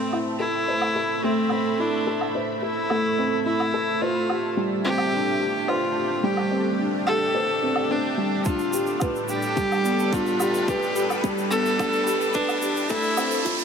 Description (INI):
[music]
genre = piano and strings electronica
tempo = 108 BPM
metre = 4/4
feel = straight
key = A minor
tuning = A4 = 442 Hz
[part]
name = clear viola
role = melody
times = 0.0-13.5 s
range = C4 to A4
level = -25 LUFS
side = equal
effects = none
[part]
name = lush unison pad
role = sustained chords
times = 0.0-13.6 s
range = A2 to B5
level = -29 LUFS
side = right 2 dB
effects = chorus, phaser, sidechain pumping
[part]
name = felt-muted upright piano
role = riff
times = 0.0-13.6 s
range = G3 to C5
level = -25 LUFS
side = left 1 dB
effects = none
[part]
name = woodblock and shaker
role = drums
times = 0.1-13.6 s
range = none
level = -32 LUFS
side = right 2 dB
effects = none
[part]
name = electronic kick drum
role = drums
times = 8.5-13.6 s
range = none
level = -29 LUFS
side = equal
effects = none
[part]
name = riser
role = sound effects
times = 10.7-13.6 s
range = none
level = -34 LUFS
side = right 3 dB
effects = none
[sound]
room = moderate huge ambient reverb, RT60 7.8 s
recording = high-pass filter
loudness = -21 LUFS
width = side -6 dB against mid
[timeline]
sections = 0.0-13.6 A section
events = build-up 0.0-13.6; riser 10.7-13.6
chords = 0.0 Am; 4.0 Csus2; 8.5 G/A; 12.9 F